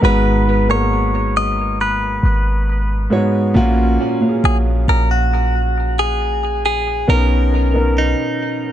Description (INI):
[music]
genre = contemporary R&B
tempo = 68 BPM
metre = 4/4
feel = straight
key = unclear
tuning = A4 = 437 Hz
[part]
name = direct-recorded clean electric guitar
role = melody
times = 0.0-8.7 s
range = D#4 to Eb5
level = -20 LUFS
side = equal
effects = phaser, tape echo
[part]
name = warm concert grand piano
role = accompaniment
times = 0.0-8.7 s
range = Ab2 to F5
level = -18 LUFS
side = right 1 dB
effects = tape echo
[part]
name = clean 808-style bass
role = bass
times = 0.0-8.1 s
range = Ab1 to B1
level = -17 LUFS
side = equal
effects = none
[sound]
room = light reverb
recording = echo-heavy mix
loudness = -14 LUFS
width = side -11 dB against mid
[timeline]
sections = 0.0-8.7 A section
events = none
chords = 0.0 Abm7; 3.6 Bbm7; 7.1 Bmaj9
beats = | 0.02 0.91 1.79 2.67 | 3.55 4.43 5.32 6.20 | 7.08 7.96